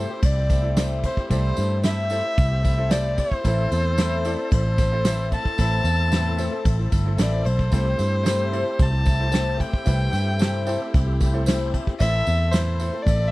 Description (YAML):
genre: folk rock and heartland rock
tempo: 112 BPM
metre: 4/4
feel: straight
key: C major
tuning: A4 = 443 Hz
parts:
  - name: dark fiddle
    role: melody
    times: 0.0-13.3 s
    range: C5 to A5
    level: -27 LUFS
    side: equal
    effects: none
  - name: bright upright piano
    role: accompaniment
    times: 0.0-13.2 s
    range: E4 to D5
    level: -35 LUFS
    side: right 3 dB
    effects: none
  - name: picked twelve-string acoustic guitar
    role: accompaniment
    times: 0.0-13.3 s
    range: A2 to A4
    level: -30 LUFS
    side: left 5 dB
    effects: none
  - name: tonewheel organ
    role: sustained chords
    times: 0.0-13.3 s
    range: A3 to A4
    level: -36 LUFS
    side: equal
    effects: slow rotary speaker, overdrive, chorus vibrato
  - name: picked electric bass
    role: bass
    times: 0.0-13.3 s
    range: G1 to G2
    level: -22 LUFS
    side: equal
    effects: none
  - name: soft brush drum kit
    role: drums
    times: 0.2-13.2 s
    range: crash cymbal, kick drum, snare drum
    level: -23 LUFS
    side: equal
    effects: none
  - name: tambourine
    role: percussion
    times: 0.2-13.1 s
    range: none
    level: -41 LUFS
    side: right 6 dB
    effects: none
room: little or no reverb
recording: dry, close 1970s-style studio recording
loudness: -19 LUFS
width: side -19 dB against mid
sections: 0.0-13.3 A section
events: none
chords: 0.0 C6; 3.4 Am; 7.7 C6; 12.0 Am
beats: 0.22 0.76 | 1.30 1.84 2.37 2.91 | 3.45 3.98 4.52 5.05 | 5.59 6.12 6.66 7.19 | 7.73 8.26 8.79 9.33 | 9.86 10.39 10.93 11.46 | 11.99 12.52 13.06